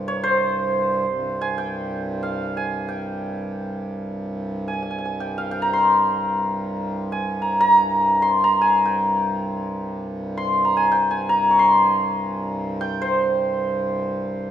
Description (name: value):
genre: indian classical, Hindustani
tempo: free time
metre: none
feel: none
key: C raga bhairavi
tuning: A4 = 440 Hz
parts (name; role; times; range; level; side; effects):
- santur; melody; 0.0-14.5 s; C5 to Db6; -19 LUFS; equal; none
- hand-pumped harmonium; drone; 0.0-14.5 s; C2 to G2; -28 LUFS; right 1 dB; none
room: wet recital hall reverb, RT60 1.6 s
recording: minimal, uncompressed stereo recording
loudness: -19 LUFS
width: side -10 dB against mid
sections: 0.0-1.1 A section; 1.1-14.5 A section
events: none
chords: none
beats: free time